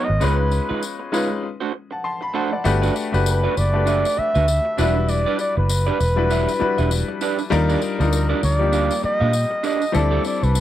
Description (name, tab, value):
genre	lush 1970s-style soul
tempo	99 BPM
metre	4/4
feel	swing 58% on 16ths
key	G major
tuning	A4 = 439 Hz
part	warm flugelhorn	melody	0.0-10.6 s	Bb4 to E5	-22 LUFS	equal	slapback echo
part	clear grand piano	accompaniment	0.0-10.6 s	F#3 to C6	-24 LUFS	left 4 dB	none
part	electric guitar through a small old amp	riff	0.0-10.6 s	G#3 to F5	-25 LUFS	right 8 dB	none
part	vintage muted fingered electric bass	bass	0.1-10.6 s	E1 to Bb2	-20 LUFS	equal	none
part	tambourine	percussion	0.2-10.6 s	none	-34 LUFS	left 8 dB	none
room	light reverb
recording	dry, close 1970s-style studio recording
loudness	-18 LUFS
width	side -12 dB against mid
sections	0.0-2.7 A section; 2.7-10.6 B section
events	flugelhorn solo 0.0-2.7; break 1.4-2.7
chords	0.2 C#9; 1.4 D7; 2.7 Gmaj7; 4.8 Em7; 7.5 Ebmaj7; 9.9 D7sus4